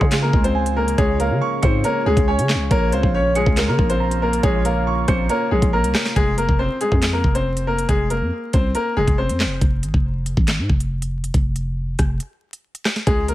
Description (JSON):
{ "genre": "hip hop, drill", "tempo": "139 BPM", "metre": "4/4", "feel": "half-time", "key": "F minor", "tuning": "A4 = 440 Hz", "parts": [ { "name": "bright upright piano", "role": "melody", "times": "0.0-9.6, 13.1-13.3 s", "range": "Ab3 to Db5", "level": "-22 LUFS", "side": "left 2 dB", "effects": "none" }, { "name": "dark concert grand piano", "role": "accompaniment", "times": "0.0-6.2 s", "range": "Ab4 to Db7", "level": "-25 LUFS", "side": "right 5 dB", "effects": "none" }, { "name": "deep dark ambient pad", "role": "sustained chords", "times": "0.0-6.1 s", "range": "Db3 to F4", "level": "-30 LUFS", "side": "equal", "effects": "chorus, built-in reverb" }, { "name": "growling 808-style bass", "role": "bass", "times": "0.0-13.3 s", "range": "F1 to Db3", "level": "-21 LUFS", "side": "equal", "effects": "none" }, { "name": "drill drum kit", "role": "drums", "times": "0.0-13.3 s", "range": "handclaps, hi-hat, kick drum, rim click, snare drum", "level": "-20 LUFS", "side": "equal", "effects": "vintage 12-bit sampler grit" } ], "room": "little or no reverb", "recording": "vinyl crackle", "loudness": "-17 LUFS", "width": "side -15 dB against mid", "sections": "0.0-6.2 A section; 6.2-13.3 B section", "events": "break 9.6-13.1", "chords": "0.0 Db; 2.7 Bbm; 6.2 Fm" }